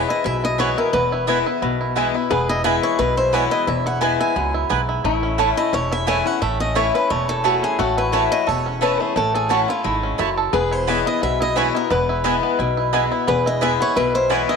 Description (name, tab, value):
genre	bluegrass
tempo	175 BPM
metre	4/4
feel	swing 54% on 8ths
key	unclear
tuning	A4 = 440 Hz
part	bluegrass banjo	melody	0.0-14.6 s	A3 to A4	-24 LUFS	right 8 dB	none
part	picked swing-style acoustic guitar	melody	0.0-14.6 s	E4 to G#5	-22 LUFS	left 1 dB	tape echo
part	lap resonator guitar	second line	0.0-14.6 s	E4 to G#4	-29 LUFS	left 9 dB	none
part	picked swing-style acoustic guitar	accompaniment	0.0-14.6 s	E2 to E4	-23 LUFS	left 12 dB	none
part	upright bass	bass	0.0-14.4 s	E1 to C#2	-26 LUFS	right 1 dB	none
part	mandolin	stabs	0.6-14.4 s	A3 to A5	-25 LUFS	right 14 dB	none
room	light reverb, small room ambience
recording	1960s-style stereo with parts hard left and right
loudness	-17 LUFS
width	side -5 dB against mid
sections	0.0-5.0 A section; 5.0-14.6 A section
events	none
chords	0.0 E; 5.0 A; 10.5 E